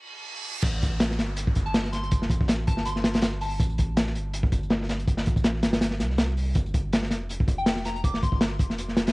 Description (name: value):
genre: drum and bass, jungle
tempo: 162 BPM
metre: 4/4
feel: swing 55% on 16ths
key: A minor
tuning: A4 = 440 Hz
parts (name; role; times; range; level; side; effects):
- reverse cymbal and downlifter; sound effects; 0.0-3.6 s; none; -38 LUFS; right 3 dB; none
- soft dub sub bass; bass; 0.6-9.1 s; F1 to C2; -30 LUFS; equal; none
- crunchy breakbeat drum kit; drums; 0.6-9.1 s; crash cymbal, hi-hat, kick drum, snare drum; -24 LUFS; equal; cassette tape
- crunchy breakbeat drum kit; drums; 0.6-9.1 s; hi-hat, snare drum; -40 LUFS; equal; high-pass filter on hats, cassette tape, high-pass filter on snare, high-pass filter on room
- soft synth bell; melody; 1.7-3.6, 7.6-8.5 s; G5 to D6; -34 LUFS; left 2 dB; chorus, phaser, vintage 12-bit sampler grit, cassette tape, dub echo
room: light reverb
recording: home recording on cassette, high-pass filter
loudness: -23 LUFS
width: side -23 dB against mid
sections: 0.6-9.1 A section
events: break 0.0-0.6; reverse cymbal 0.0-0.6; drop 0.6-9.1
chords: 0.0 N.C.; 0.6 A7(no3); 6.6 G7(no3)